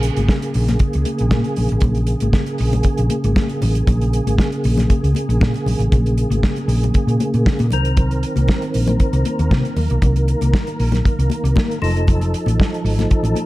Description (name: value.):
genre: disco.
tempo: 117 BPM.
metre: 4/4.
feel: straight.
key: Bb minor.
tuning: A4 = 440 Hz.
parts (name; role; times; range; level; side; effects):
percussive tonewheel organ; sustained chords; 0.0-13.5 s; Db3 to Bb4; -22 LUFS; right 1 dB; chorus vibrato, slow rotary speaker.
hollow-body short-scale fingered electric bass; bass; 0.0-13.3 s; F1 to C3; -18 LUFS; equal; none.
damped 70s drum kit; drums; 0.0-13.5 s; hi-hat, kick drum, snare drum; -19 LUFS; equal; none.
congas; percussion; 0.2-13.5 s; none; -27 LUFS; left 4 dB; none.
room: small room ambience.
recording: dark, warm production.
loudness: -15 LUFS.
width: side -18 dB against mid.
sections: 0.0-13.5 A section.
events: none.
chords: 0.0 Bbm7; 7.7 Cm7; 11.8 F7.